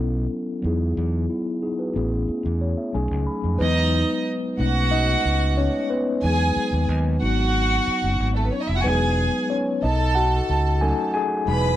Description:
soul; 91 BPM; 4/4; straight; E major; A4 = 445 Hz
mellow tine electric piano; accompaniment; 0.0-11.8 s; F#3 to B5; -24 LUFS; left 2 dB; medium stereo tremolo
overdriven fingered electric bass; bass; 0.0-11.7 s; E1 to F2; -22 LUFS; right 1 dB
warm studio violin section; second line; 3.6-11.8 s; A3 to B5; -24 LUFS; right 2 dB
light reverb, small room ambience; -20 LUFS; side -13 dB against mid
0.0-3.6 A section; 3.6-11.8 B section
tine electric piano fill 2.3-3.6; tine electric piano solo 3.6-11.8
0.0 B7sus4; 0.6 Emaj9; 2.0 Amaj9; 2.9 B13; 3.6 Emaj9; 4.6 B13; 6.2 Emaj9; 7.2 G#m7; 8.9 Emaj9; 9.8 B13
0.31 | 0.96 1.62 2.28 2.94 | 3.60 4.26 4.91 5.57 | 6.23 6.88 7.54 8.20 | 8.85 9.51 10.16 10.82 | 11.48

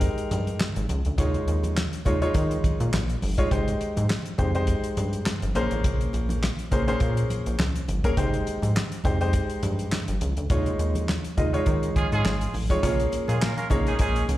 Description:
early-eighties boogie funk; 103 BPM; 4/4; swing 56% on 16ths; A4 = 440 Hz
clear baby grand piano; accompaniment; 0.0-14.4 s; Ab3 to Eb5; -28 LUFS; left 1 dB; slapback echo
rubbery square bass; bass; 0.0-14.4 s; G1 to Eb3; -26 LUFS; equal
damped 70s drum kit; drums; 0.0-14.4 s; handclaps, hi-hat, kick drum, snare drum; -27 LUFS; equal
congas; percussion; 0.0-14.4 s; -34 LUFS; right 2 dB; slapback echo
clear horn section; second line; 12.0-14.2 s; Ab3 to Bb4; -29 LUFS; right 3 dB; slapback echo
light reverb; live gig heard through the venue's PA, recital hall reverb; -22 LUFS; side -15 dB against mid
0.0-12.8 A section; 12.8-14.4 B section
band accent 10.5-12.8
0.0 Abmaj7(no3); 1.2 Eb9sus4; 3.5 Abmaj7; 5.6 Bbm9; 8.2 Abmaj7; 10.5 Eb9sus4; 12.8 Bbm7; 13.7 Eb7sus4/Bb
0.02 0.60 | 1.18 1.76 2.35 2.93 | 3.51 4.09 4.68 5.26 | 5.84 6.42 7.01 7.59 | 8.17 8.76 9.34 9.92 | 10.50 11.09 11.67 12.25 | 12.83 13.41 14.00

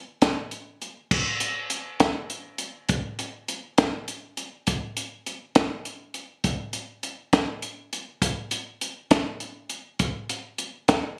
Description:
rock; 68 BPM (dotted quarters); 6/8; straight
compact cocktail drum kit; drums; 0.2-11.0 s; crash cymbal, hi-hat, kick drum, snare drum; -25 LUFS; equal
light reverb; recorded on a phone in the room, studio reverb; -28 LUFS; mono
0.0-1.1 A section; 1.1-11.2 B section
0.22 | 1.11 2.00 | 2.89 3.78 | 4.66 5.55 | 6.44 7.33 | 8.22 9.11 | 9.99 10.88

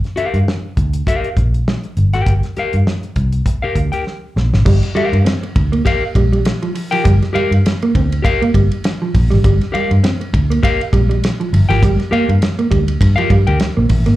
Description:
funk; 100 BPM; 4/4; swing 56% on 16ths; G minor; A4 = 440 Hz
damped 70s drum kit; drums; 0.0-14.2 s; crash cymbal, hi-hat, kick drum, ride cymbal, snare drum; -18 LUFS; equal
mellow electric guitar; accompaniment; 0.2-13.6 s; G4 to G5; -19 LUFS; left 3 dB; slapback echo
vintage muted fingered electric bass; bass; 0.2-14.2 s; G1 to G2; -14 LUFS; equal
mellow electric guitar; riff; 4.7-14.2 s; F3 to C4; -19 LUFS; right 3 dB; slapback echo
light reverb; live gig heard through the venue's PA, club reverb; -13 LUFS; side -15 dB against mid
0.0-4.7 A section; 4.7-14.2 B section
drum fill 4.1-4.7
0.0 Gm7
0.47 1.07 1.67 | 2.27 2.87 3.46 4.06 | 4.66 5.26 5.86 6.46 | 7.05 7.65 8.24 8.84 | 9.44 10.03 10.63 11.22 | 11.82 12.41 13.01 13.60

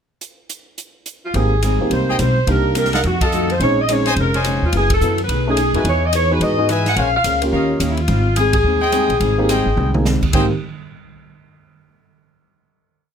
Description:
jazz, big band swing; 213 BPM; 4/4; swing 62% on 8ths; Ab major; A4 = 440 Hz
swinging big-band drum kit; drums; 0.2-10.4 s; crash cymbal, hi-hat, kick drum, ride cymbal, snare drum, toms; -24 LUFS; right 1 dB
warm saxophone section; melody; 1.3-10.0 s; Fb4 to Gb5; -19 LUFS; left 1 dB
archtop guitar, miked and amplified; accompaniment; 1.3-10.5 s; Ab2 to C5; -24 LUFS; left 3 dB
warm grand piano; accompaniment; 1.3-10.5 s; A3 to Ab4; -21 LUFS; right 1 dB
upright bass; bass; 1.3-10.5 s; F1 to G#2; -19 LUFS; equal
bright trumpet section; stabs; 2.1-10.5 s; Ab4 to A5; -22 LUFS; equal
little or no reverb; close, detailed microphones; -14 LUFS; side -7 dB against mid
0.2-1.3 pickup bar; 1.3-10.3 A section; 10.3-11.5 final chord
band accent 3.2, 4.9, 8.5; drum fill 9.8
0.2 N.C.; 1.3 Abmaj7; 2.5 Cm7; 3.0 F7b9; 3.6 Bbm11; 4.7 Gbm7; 5.3 B13; 5.8 Emaj7; 7.0 Bbm9; 7.5 Eb7; 8.1 Abmaj7
| 0.22 0.50 0.78 1.06 | 1.35 1.63 1.91 2.19 | 2.48 2.76 3.04 3.32 | 3.60 3.88 4.17 4.45 | 4.73 5.01 5.29 5.57 | 5.85 6.13 6.41 6.68 | 6.96 7.24 7.52 7.80 | 8.08 8.36 8.64 8.93 | 9.21 9.49 9.77 10.05 | 10.33

